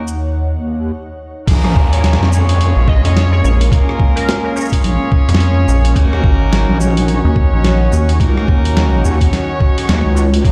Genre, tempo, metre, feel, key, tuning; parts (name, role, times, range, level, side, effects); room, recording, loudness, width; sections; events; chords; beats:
glitch hop; 107 BPM; 4/4; swing 59% on 16ths; Bb minor; A4 = 440 Hz
warm analog pad; sustained chords; 0.0-10.5 s; Eb3 to Gb4; -25 LUFS; equal; chorus, vintage 12-bit sampler grit, sidechain pumping
bright horn section; stabs; 0.0-10.5 s; Bb3 to Db5; -24 LUFS; equal; vintage 12-bit sampler grit, sidechain pumping, digital delay
wobble bass; bass; 0.0-10.5 s; Bb1 to F2; -16 LUFS; equal; chorus, tube saturation
granular cloud pad; texture; 0.0-10.5 s; Db4 to Ab5; -30 LUFS; equal; built-in reverb, sidechain pumping
boom bap sampler-style drum kit; drums; 0.1-10.5 s; crash cymbal, hi-hat, rim click, shaker, snare drum; -23 LUFS; equal
electronic kick drum; drums; 1.5-10.5 s; -15 LUFS; equal
downlifter; sound effects; 1.5-6.0 s; -31 LUFS; equal
rubbery square bass; bass; 1.8-9.0 s; Ab1 to F2; -14 LUFS; equal
sync lead; melody; 1.9-4.7 s; Bb4 to Eb5; -27 LUFS; equal; lush chorus, digital delay
digital ambience; played on a big sound system in a bare room, large studio reverb; -13 LUFS; mono
0.0-1.5 A section; 1.5-10.5 B section
stop 0.9-1.5; drop 1.5-10.5
0.0 Ebm7; 1.5 Bbm7; 6.0 Ebm7
0.35 0.92 | 1.48 2.04 2.60 3.16 | 3.72 4.28 4.84 5.40 | 5.96 6.52 7.08 7.64 | 8.20 8.77 9.33 9.89 | 10.45